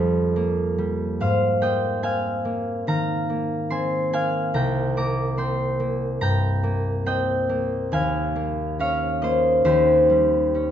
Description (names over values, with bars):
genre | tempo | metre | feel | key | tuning
classical, solo harp piece | 71 BPM | 4/4 | rubato | Ab major | A4 = 438 Hz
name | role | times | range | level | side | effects
concert harp | solo | 0.0-10.7 s | C2 to D6 | -20 LUFS | equal | none
room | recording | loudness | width
wet recital hall reverb, RT60 1.4 s | nothing above 7.5 kHz | -20 LUFS | side -10 dB against mid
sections
0.0-10.7 A section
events
none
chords
0.0 Fm11; 1.2 Ab69; 4.5 Cm7; 7.9 Eb9sus4; 9.7 Eb13